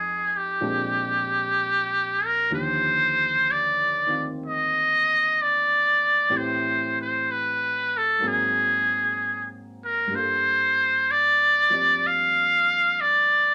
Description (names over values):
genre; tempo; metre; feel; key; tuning
jazz ballad; 63 BPM; 4/4; swing 68% on 8ths; unclear; A4 = 441 Hz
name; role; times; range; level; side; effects
trumpet with metal mute; melody; 0.0-13.5 s; G4 to F5; -22 LUFS; equal; none
warm grand piano; accompaniment; 0.0-13.5 s; Eb2 to G5; -36 LUFS; equal; none
room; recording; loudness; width
moderate studio ambience, RT60 0.5 s; none; -22 LUFS; mono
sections
0.0-13.5 A section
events
none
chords
0.0 Fm7; 0.6 Bb13; 2.5 Ebmaj9; 6.3 Am7; 8.2 Ab9; 10.1 Gm9